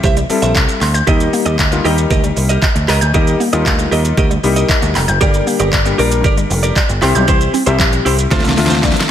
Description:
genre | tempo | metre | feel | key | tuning
dance-pop | 116 BPM | 4/4 | straight | unclear | A4 = 444 Hz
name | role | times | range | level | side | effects
mallet-like synth pluck | arpeggios | 0.0-8.9 s | D3 to G6 | -21 LUFS | right 1 dB | chorus, sidechain pumping, digital delay
direct-recorded clean electric guitar | riff | 0.0-9.0 s | E4 to E5 | -20 LUFS | right 4 dB | lush chorus, slapback echo
overdriven picked electric bass | bass | 0.0-8.9 s | F1 to Eb2 | -16 LUFS | equal | sidechain pumping
pop drum kit | drums | 0.0-9.1 s | handclaps, hi-hat, kick drum, shaker, snare drum | -16 LUFS | equal | none
clear concert grand piano | accompaniment | 0.3-9.1 s | G3 to Bb4 | -18 LUFS | left 4 dB | sidechain pumping, slapback echo
room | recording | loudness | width
moderate recital hall reverb, RT60 1.4 s, digital ambience | big arena sound | -11 LUFS | side -10 dB against mid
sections
0.0-9.1 A section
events
drum fill 8.3-9.1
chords
0.0 C; 1.1 Eb; 5.2 Gm; 7.0 C; 8.3 Dm7

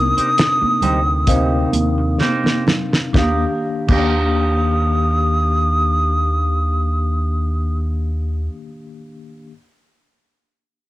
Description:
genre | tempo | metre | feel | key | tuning
lush 1970s-style soul | 62-69 BPM | 4/4 | swing 54% on 16ths | Eb major | A4 = 440 Hz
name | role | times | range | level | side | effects
breathy mellow silver concert flute | melody | 0.0-7.8 s | Eb6 | -20 LUFS | equal | none
mellow tine electric piano | accompaniment | 0.0-9.5 s | C3 to F5 | -23 LUFS | left 2 dB | medium stereo tremolo, cassette tape
overdriven fingered electric bass | bass | 0.0-8.5 s | C2 to Eb2 | -19 LUFS | equal | none
clean electric guitar | riff | 0.2-8.5 s | Bb3 to D5 | -27 LUFS | right 3 dB | wah, cassette tape
damped 70s drum kit | drums | 0.2-4.1 s | crash cymbal, hi-hat, kick drum, snare drum | -19 LUFS | equal | none
congas | percussion | 0.4-4.1 s | none | -24 LUFS | right 4 dB | none
room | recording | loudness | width
light reverb, small room reverb | home recording on cassette | -15 LUFS | side -17 dB against mid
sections
0.0-3.1 A section; 3.1-7.0 B section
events
slowing down 0.0-3.1; drum fill 2.2-3.1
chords
0.0 Cm7; 3.1 Ebmaj7

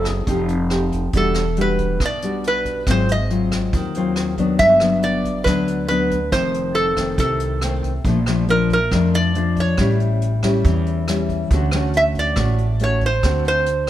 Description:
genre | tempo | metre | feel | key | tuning
bossa nova | 139 BPM | 4/4 | straight | unclear | A4 = 440 Hz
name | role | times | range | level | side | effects
metal-body resonator slide guitar | melody | 0.0-13.9 s | A4 to E5 | -20 LUFS | right 1 dB | none
nylon-string guitar | accompaniment | 0.0-13.9 s | F2 to A4 | -21 LUFS | left 3 dB | none
upright bass | bass | 0.0-13.9 s | E1 to F2 | -22 LUFS | right 1 dB | none
vintage brush drum kit | drums | 0.1-13.9 s | hi-hat, kick drum, rim click | -26 LUFS | right 1 dB | none
room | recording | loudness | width
light reverb | none | -16 LUFS | side -12 dB against mid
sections
0.0-8.1 A section; 8.1-13.9 B section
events
none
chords
0.3 F9; 1.1 Em9; 2.9 Ab6; 4.6 Gmaj7; 6.3 F7; 8.1 Bbmaj7; 9.8 A7; 11.5 Dmaj7; 13.2 D7

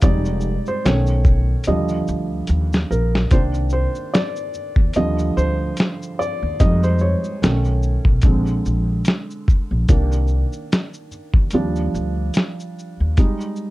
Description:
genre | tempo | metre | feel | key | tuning
lo-fi hip hop | 73 BPM | 4/4 | swing 57% on 16ths | Eb major | A4 = 437 Hz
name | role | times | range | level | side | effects
felt-muted upright piano | accompaniment | 0.0-13.7 s | D3 to Eb5 | -23 LUFS | right 1 dB | cassette tape, plate reverb
upright bass | bass | 0.0-13.1 s | F1 to F2 | -20 LUFS | equal | none
dusty soul sampler-style drum kit | drums | 0.0-13.7 s | hi-hat, kick drum, shaker, snare drum | -16 LUFS | equal | none
room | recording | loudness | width
light reverb | dark, warm production | -17 LUFS | side -18 dB against mid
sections
0.0-3.3 A section; 3.3-13.7 B section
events
felt piano solo 0.0-3.3, 3.3-13.7; drum fill 1.7-3.3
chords
0.0 Fm7; 0.8 B9; 1.7 Ebmaj7; 3.3 Cm7; 5.0 Ebmaj7; 6.6 Fm7; 7.4 B9; 8.2 Bb9; 9.9 Cm7; 11.5 Ebmaj7; 13.2 Ebadd11/G

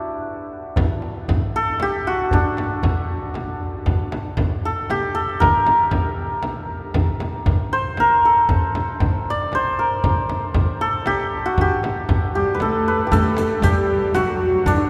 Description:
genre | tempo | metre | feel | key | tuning
Persian modal ensemble | 117 BPM | 3/4 | straight | G avaz esfahan | A4 = 442 Hz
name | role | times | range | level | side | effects
santur | melody | 0.0-14.9 s | D4 to D5 | -23 LUFS | equal | none
frame drum | percussion | 0.8-14.8 s | none | -27 LUFS | equal | none
tombak | percussion | 0.8-14.8 s | none | -27 LUFS | equal | none
breathy mellow low ney | second line | 12.3-14.9 s | D4 to B4 | -25 LUFS | equal | none
rich studio cello section | second line | 12.4-14.9 s | D3 to A3 | -28 LUFS | equal | none
riq | percussion | 13.1-14.8 s | none | -34 LUFS | equal | none
room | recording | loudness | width
wet cathedral reverb, RT60 7.0 s | recorded in a church or concert hall | -20 LUFS | mono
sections
0.8-13.1 A section; 13.1-14.9 B section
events
break 0.0-0.8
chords
none

